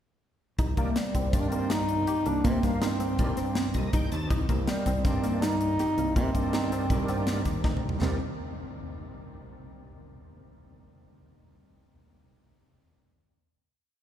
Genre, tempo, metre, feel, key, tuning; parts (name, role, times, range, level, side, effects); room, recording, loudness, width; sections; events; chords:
progressive instrumental, band music in an uneven meter; 162 BPM; 5/4; straight; C minor; A4 = 441 Hz
tight sequenced synth; arpeggios; 0.6-8.2 s; Bb3 to G4; -34 LUFS; equal; chorus, phaser
fingered electric bass; bass; 0.6-8.2 s; C2 to C3; -32 LUFS; equal
tight funk drum kit; drums; 0.6-8.1 s; hi-hat, kick drum, snare drum, toms; -30 LUFS; equal
overdriven tonewheel organ; accompaniment; 0.8-8.2 s; Eb3 to A5; -38 LUFS; right 1 dB; chorus vibrato, slow rotary speaker
mellow bass clarinet; melody; 0.9-7.6 s; G3 to Eb4; -31 LUFS; equal
wet cathedral reverb, RT60 6.3 s; recorded in a church or concert hall; -25 LUFS; side -10 dB against mid
0.6-8.0 groove; 8.0-9.9 final chord
tonewheel organ fill 3.6-4.3; drum fill 7.6-8.0
0.6 Cm7